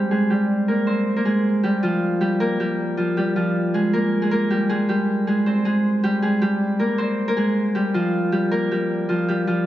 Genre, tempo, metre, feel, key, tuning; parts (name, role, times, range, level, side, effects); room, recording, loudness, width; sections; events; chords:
hip hop; 157 BPM; 4/4; half-time; G phrygian; A4 = 440 Hz
Celtic harp; solo; 0.0-9.7 s; F3 to C5; -18 LUFS; equal; low-pass filter
moderate lush hall reverb, RT60 2.7 s; -18 LUFS; side -13 dB against mid
0.0-1.6 A section; 1.6-9.7 B section
0.0 Ab; 1.6 Gm7; 4.7 Ab; 7.8 Gm7